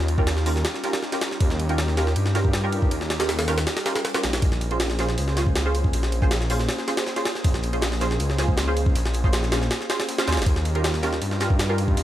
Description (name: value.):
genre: drum and bass, jungle.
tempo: 159 BPM.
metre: 4/4.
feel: straight.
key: Bb dorian.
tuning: A4 = 440 Hz.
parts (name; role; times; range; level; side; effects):
warbly tape-like pad; sustained chords; 0.0-12.0 s; G3 to C5; -32 LUFS; left 1 dB; chorus, built-in reverb.
filtered dub chord stab; stabs; 0.0-12.0 s; Db4 to C5; -28 LUFS; right 2 dB; ensemble chorus, dub echo.
detuned saw bass; bass; 0.0-12.0 s; F1 to G2; -24 LUFS; equal; none.
jungle sampler-style drum kit; drums; 0.1-12.0 s; hi-hat, kick drum, ride cymbal, snare drum; -24 LUFS; equal; none.
crunchy breakbeat drum kit; drums; 4.4-12.0 s; hi-hat, snare drum; -39 LUFS; equal; none.
room: little or no reverb.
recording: vinyl crackle.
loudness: -20 LUFS.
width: side -13 dB against mid.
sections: 0.0-12.0 A section.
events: none.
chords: 0.0 Eb9; 4.4 Bbm9; 10.5 Eb9.